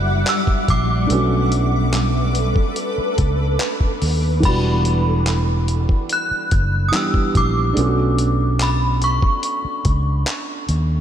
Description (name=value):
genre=contemporary R&B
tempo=72 BPM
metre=4/4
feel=straight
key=E minor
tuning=A4 = 440 Hz
part: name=synth chime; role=melody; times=0.0-10.2 s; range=B5 to F#6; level=-24 LUFS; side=equal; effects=ensemble chorus, analog delay
part: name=felt-muted upright piano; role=accompaniment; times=0.0-11.0 s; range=E3 to G4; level=-24 LUFS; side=right 3 dB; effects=none
part: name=granular cloud pad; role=sustained chords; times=0.0-4.4 s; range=G3 to D6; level=-24 LUFS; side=equal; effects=built-in reverb, ensemble chorus
part: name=fingered electric bass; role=bass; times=0.0-11.0 s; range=E1 to D#2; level=-18 LUFS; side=equal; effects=none
part: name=dusty soul sampler-style drum kit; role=drums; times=0.3-10.9 s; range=crash cymbal, handclaps, hi-hat, kick drum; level=-22 LUFS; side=equal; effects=none
room=moderate cathedral reverb, RT60 5.5 s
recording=dreamy mix soaked in reverb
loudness=-16 LUFS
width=side -9 dB against mid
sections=0.0-4.4 A section; 4.4-11.0 A section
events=none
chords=0.0 Em9; 1.1 Bm9; 4.4 Em9; 7.8 Bm9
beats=0.27 | 1.10 1.94 2.77 3.60 | 4.43 5.27 6.10 6.93 | 7.77 8.60 9.44 10.27